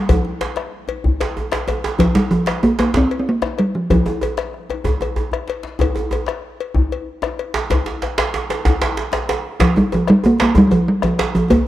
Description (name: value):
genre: west african traditional, West African drum ensemble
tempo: 126 BPM (dotted quarters)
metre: 12/8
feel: straight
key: unclear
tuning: A4 = 440 Hz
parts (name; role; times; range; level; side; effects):
- talking drum; melody; 0.0-4.5, 9.6-11.7 s; F3 to C4; -15 LUFS; right 1 dB; none
- bombo; percussion; 0.1-11.7 s; none; -21 LUFS; left 2 dB; none
- cowbell; percussion; 0.1-11.7 s; none; -26 LUFS; left 9 dB; none
- djembe; percussion; 0.1-11.7 s; none; -25 LUFS; left 2 dB; none
- djembe; percussion; 0.1-11.7 s; none; -22 LUFS; right 3 dB; none
room: studio reverb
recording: dry, close 1970s-style studio recording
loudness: -16 LUFS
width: side -14 dB against mid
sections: 0.0-11.7 A section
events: drum fill 5.2-5.8, 11.5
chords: none